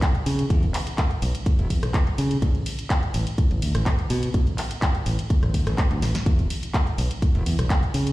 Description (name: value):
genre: filtered disco house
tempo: 125 BPM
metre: 4/4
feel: straight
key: unclear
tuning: A4 = 441 Hz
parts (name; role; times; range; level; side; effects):
- electronic kick drum; drums; 0.0-7.8 s; none; -21 LUFS; equal; none
- house drum kit; drums; 0.0-8.1 s; handclaps, hi-hat, ride cymbal, rim click, snare drum; -30 LUFS; equal; sidechain pumping on hats, sidechain pumping on cymbals
- modern bright fingered electric bass; bass; 0.3-8.1 s; E1 to C#3; -23 LUFS; equal; sidechain pumping
room: little or no reverb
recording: played on a big sound system in a bare room, large studio reverb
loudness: -20 LUFS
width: side -18 dB against mid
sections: 0.0-8.1 A section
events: drum fill 6.0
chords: none